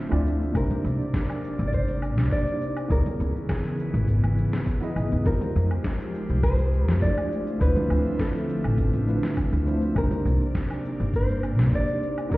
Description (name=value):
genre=sunset chillout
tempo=102 BPM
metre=4/4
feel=straight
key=unclear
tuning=A4 = 440 Hz
part: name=tine electric piano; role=accompaniment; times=0.0-12.4 s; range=Ab3 to Eb5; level=-31 LUFS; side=equal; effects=overdrive, fast stereo tremolo, auto-pan, ping-pong delay
part: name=airy breathy pad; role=sustained chords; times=0.0-12.4 s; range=C3 to E5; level=-31 LUFS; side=equal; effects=chorus
part: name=upright bass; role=bass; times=0.1-12.4 s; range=G1 to F2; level=-24 LUFS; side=equal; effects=none
part: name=smooth R&B drum kit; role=drums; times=0.1-12.4 s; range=cabasa, hi-hat, snare drum, woodblock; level=-34 LUFS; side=equal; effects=studio reverb
part: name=electronic kick drum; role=drums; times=0.5-12.4 s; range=none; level=-27 LUFS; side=equal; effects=studio reverb
part: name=nylon-string guitar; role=melody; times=0.6-12.4 s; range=Ab4 to D5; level=-32 LUFS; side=right 1 dB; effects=tape echo
part: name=congas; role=percussion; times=0.7-11.4 s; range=none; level=-33 LUFS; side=right 1 dB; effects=none
room=light reverb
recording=heard muffled through a wall, stone room reverb, EQ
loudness=-22 LUFS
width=side -19 dB against mid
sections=0.5-12.4 A section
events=none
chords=0.0 Dm9; 0.5 Cm9; 2.9 Dbm9; 5.3 Fm9; 7.3 Dm9; 10.0 Cm9